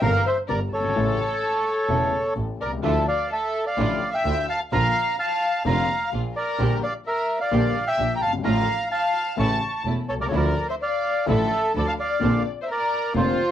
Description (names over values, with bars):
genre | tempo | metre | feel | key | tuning
tango | 128 BPM | 4/4 | rubato | D minor | A4 = 440 Hz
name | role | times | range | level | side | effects
bandoneon | melody | 0.0-13.5 s | F4 to C#6 | -24 LUFS | right 2 dB | cassette tape
warm studio violin section | second line | 0.0-13.5 s | F4 to A5 | -29 LUFS | left 7 dB | none
warm concert grand piano | accompaniment | 0.0-13.3 s | E1 to G4 | -28 LUFS | left 7 dB | none
clear double bass | bass | 0.0-13.3 s | E1 to D2 | -26 LUFS | right 2 dB | transformer saturation
clear studio string section | stabs | 2.8-13.4 s | F3 to G4 | -30 LUFS | right 7 dB | none
room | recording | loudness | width
moderate small room reverb, RT60 0.5 s | home recording on cassette | -21 LUFS | side -10 dB against mid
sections
0.0-13.5 A section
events
none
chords
0.0 Edim/G; 1.0 A; 2.8 Dmadd9; 4.7 Bb; 6.6 Gm/Bb; 8.4 Dm/A; 9.4 A; 10.3 Dmadd9; 12.2 Bbadd9